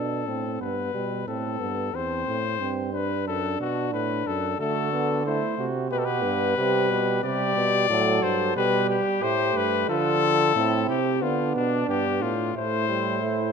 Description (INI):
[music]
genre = classical, imitative canzona for brass ensemble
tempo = 90 BPM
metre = 4/4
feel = straight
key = unclear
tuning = A4 = 440 Hz
[part]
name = clear trumpet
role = melody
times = 0.0-13.5 s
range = D4 to D5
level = -26 LUFS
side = left 10 dB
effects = none
[part]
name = clear euphonium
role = accompaniment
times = 0.0-13.5 s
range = F3 to D4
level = -29 LUFS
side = right 4 dB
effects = none
[part]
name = warm bass trombone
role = bass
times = 0.0-13.5 s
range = E2 to D3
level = -29 LUFS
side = right 3 dB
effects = none
[part]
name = mellow flugelhorn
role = second line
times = 4.6-13.5 s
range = D4 to A4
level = -30 LUFS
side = right 7 dB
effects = none
[sound]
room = moderate concert hall reverb, RT60 2.1 s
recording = none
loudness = -22 LUFS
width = side -6 dB against mid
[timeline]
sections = 0.0-13.5 A section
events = none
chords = 0.0 D5; 0.6 G; 1.9 C/E; 3.3 D/F#; 4.6 D; 5.9 G; 7.2 C5; 8.6 G/B; 9.9 Dm; 11.2 Bdim; 12.6 Esus4/A